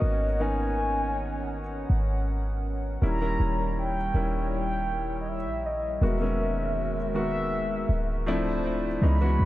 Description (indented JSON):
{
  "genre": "R&B",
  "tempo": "80 BPM",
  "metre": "4/4",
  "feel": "straight",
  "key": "unclear",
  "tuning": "A4 = 440 Hz",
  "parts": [
    { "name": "mellow horn-like synth lead", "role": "melody", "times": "0.0-9.5 s", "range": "D#5 to B5", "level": "-32 LUFS", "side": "equal", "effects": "chorus, dub echo" },
    { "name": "warm grand piano", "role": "accompaniment", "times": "0.0-9.5 s", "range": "D#3 to F#4", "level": "-31 LUFS", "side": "left 1 dB", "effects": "dub echo" },
    { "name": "hollow soft pad", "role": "sustained chords", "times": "0.0-9.5 s", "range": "D#3 to F#5", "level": "-36 LUFS", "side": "equal", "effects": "chorus" },
    { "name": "clean 808-style bass", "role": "bass", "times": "0.0-9.5 s", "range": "D1 to C#2", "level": "-28 LUFS", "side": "equal", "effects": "none" }
  ],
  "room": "light reverb",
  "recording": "echo-heavy mix",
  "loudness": "-25 LUFS",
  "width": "side -15 dB against mid",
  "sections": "0.0-3.0 A section; 3.0-9.5 B section",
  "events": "none",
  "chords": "0.0 G#m11; 3.0 D#7b9; 6.0 Emaj9#11; 8.3 Dm9"
}